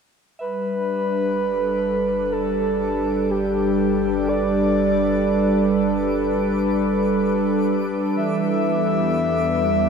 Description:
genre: ambient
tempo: 62 BPM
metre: 4/4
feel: straight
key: G major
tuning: A4 = 440 Hz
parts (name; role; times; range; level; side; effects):
- breathy flute-like synth lead; melody; 0.4-9.9 s; G4 to E5; -23 LUFS; left 1 dB; chorus, tremolo, ping-pong delay
- warm analog pad; sustained chords; 0.4-9.9 s; E3 to B4; -22 LUFS; left 1 dB; chorus
- soft synth bell; arpeggios; 0.4-8.2 s; E5; -44 LUFS; right 1 dB; chorus, ping-pong delay
- round analog bass; bass; 0.4-9.9 s; G1 to E2; -35 LUFS; left 1 dB; none
- organ-like drone; drone; 0.9-9.9 s; G3; -26 LUFS; right 6 dB; ensemble chorus, built-in reverb
- twinkling granular texture; texture; 1.3-9.9 s; D6; -39 LUFS; right 4 dB; built-in reverb
room: wet huge ambient reverb, RT60 7.6 s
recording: none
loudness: -18 LUFS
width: side -6 dB against mid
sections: 0.4-9.9 A section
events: fade-in on synth bell 0.4-9.9; fade-in on analog synth bass 0.4-9.9; fade-in on synth texture 0.4-9.9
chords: 0.4 G; 8.1 Em7

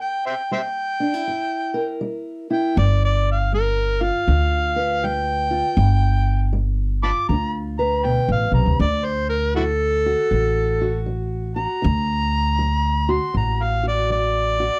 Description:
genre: acoustic country blues, solo or duo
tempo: 79 BPM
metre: 4/4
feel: swing 63% on 8ths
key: unclear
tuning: A4 = 440 Hz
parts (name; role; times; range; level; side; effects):
- overdriven harmonica; melody; 0.0-14.8 s; E4 to D6; -24 LUFS; equal; slapback echo
- fingerpicked steel-string acoustic guitar; accompaniment; 0.0-14.8 s; G2 to B4; -28 LUFS; equal; none
- upright bass; bass; 2.8-14.7 s; G1 to D2; -23 LUFS; equal; none
room: little or no reverb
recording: dry, close 1970s-style studio recording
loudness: -21 LUFS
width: mono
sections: 0.0-14.8 A section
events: harmonica solo 0.0-14.8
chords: 0.0 C7; 2.8 G7; 8.8 D

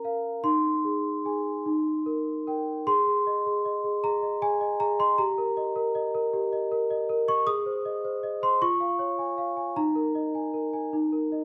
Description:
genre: classical, lullaby for celesta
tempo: 52 BPM (dotted quarters)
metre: 6/8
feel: straight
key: Ab major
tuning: A4 = 437 Hz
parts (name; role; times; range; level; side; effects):
- large celesta; solo; 0.0-11.4 s; Db4 to Eb6; -27 LUFS; equal; none
room: light reverb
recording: none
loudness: -27 LUFS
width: mono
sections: 0.0-2.9 A section; 2.9-11.4 B section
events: none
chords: 0.4 Ab/Eb; 1.7 Eb; 2.9 Ab; 5.2 Eb/G; 7.5 Ab; 8.6 Db/F; 9.8 Ebsus4; 10.9 Eb5

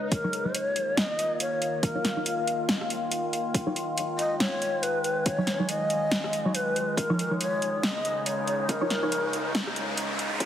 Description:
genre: deep dubstep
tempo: 140 BPM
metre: 4/4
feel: swing 58% on 16ths, half-time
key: Eb minor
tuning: A4 = 440 Hz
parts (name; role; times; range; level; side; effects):
- breathy long shakuhachi; melody; 0.0-9.5 s; Bb4 to Eb5; -29 LUFS; left 1 dB; low-pass filter, dub echo
- overtone-sweeping drone; sustained chords; 0.0-10.5 s; Db3 to F4; -32 LUFS; left 1 dB; chorus, built-in reverb
- swell and riser; sound effects; 0.0-0.1, 7.7-10.5 s; none; -35 LUFS; equal; none
- deep house drum kit; drums; 0.1-10.5 s; hi-hat, rim click, snare drum; -29 LUFS; equal; overdrive, studio reverb
- electronic kick drum; drums; 0.1-10.5 s; none; -28 LUFS; equal; overdrive, high-pass filter on kick, studio reverb
- filtered dub chord stab; stabs; 0.2-9.1 s; F3 to Db5; -32 LUFS; right 1 dB; phaser, dub echo
room: moderate digital room reverb, RT60 1.1 s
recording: heavily compressed radio sound, multiband compression, high-pass filter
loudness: -25 LUFS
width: side -10 dB against mid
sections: 0.1-10.5 A section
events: build-up 0.1-10.5; filter sweep on synth stab 0.1-10.5; riser 7.7-10.5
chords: 0.1 Ebm7; 7.0 Dbadd9

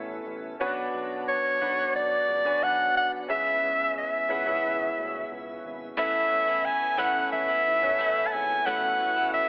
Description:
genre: piano-driven pop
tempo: 89 BPM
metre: 4/4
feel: straight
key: A major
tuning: A4 = 439 Hz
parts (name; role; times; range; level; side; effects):
- clear concert grand piano; accompaniment; 0.0-9.5 s; A2 to G#5; -36 LUFS; equal; analog chorus
- mellow tonewheel organ; sustained chords; 0.0-9.5 s; B2 to F#4; -43 LUFS; equal; slow rotary speaker
- round analog bass; bass; 0.0-9.4 s; G#1 to D2; -49 LUFS; equal; none
- breathy soprano saxophone; melody; 1.3-9.5 s; C#5 to A5; -27 LUFS; equal; none
- direct-recorded clean electric guitar; riff; 6.0-9.5 s; A2 to E4; -36 LUFS; equal; none
room: wet plate reverb, RT60 2.5 s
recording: dreamy mix soaked in reverb, telephone sound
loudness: -26 LUFS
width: mono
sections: 0.0-9.5 A section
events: none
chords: 0.0 Aadd9; 0.6 Bmadd9; 3.3 C#m7; 6.0 Aadd9

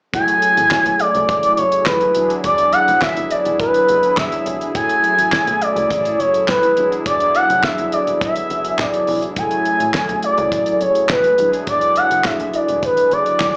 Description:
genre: early-eighties boogie funk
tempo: 104 BPM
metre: 4/4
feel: straight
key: F# minor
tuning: A4 = 440 Hz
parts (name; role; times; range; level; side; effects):
- expressive portamento lead; melody; 0.1-13.6 s; B4 to G#5; -18 LUFS; equal; chorus, slapback echo
- mellow synth brass; accompaniment; 0.1-13.6 s; F#3 to G#4; -26 LUFS; equal; chorus, slapback echo
- warm brass ensemble; sustained chords; 0.1-13.6 s; C#3 to G#4; -32 LUFS; equal; none
- plucky analog bass; bass; 0.1-13.6 s; E1 to C#2; -34 LUFS; equal; none
- damped 70s drum kit; drums; 0.1-13.5 s; handclaps, hi-hat, kick drum, snare drum; -26 LUFS; equal; none
room: light reverb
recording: live gig heard through the venue's PA, club reverb, small speaker sound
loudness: -17 LUFS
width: mono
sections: 0.1-13.6 A section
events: none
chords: 0.1 F#m9; 2.2 E9; 4.8 F#m9; 6.8 E9; 9.4 F#m9; 11.4 E9

